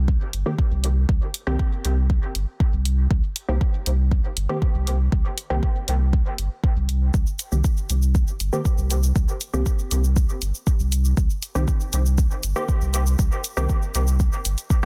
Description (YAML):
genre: dub techno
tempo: 119 BPM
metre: 4/4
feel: straight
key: C minor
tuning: A4 = 437 Hz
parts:
  - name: warm sub bass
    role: bass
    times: 0.0-14.9 s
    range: G1 to C2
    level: -23 LUFS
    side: equal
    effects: sidechain pumping
  - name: electronic kick drum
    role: drums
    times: 0.1-14.8 s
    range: none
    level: -23 LUFS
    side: equal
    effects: none
  - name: electronic hi-hat and shaker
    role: drums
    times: 0.3-14.9 s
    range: none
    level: -32 LUFS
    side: equal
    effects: none
  - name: filtered dub chord stab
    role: stabs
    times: 0.5-14.9 s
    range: Eb3 to G4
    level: -32 LUFS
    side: equal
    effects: chorus, phaser, sidechain pumping, dub echo
room: little or no reverb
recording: dense, heavily limited modern master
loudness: -22 LUFS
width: mono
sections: 0.0-14.9 A section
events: filter sweep on synth stab 0.0-14.9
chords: 0.0 Cm7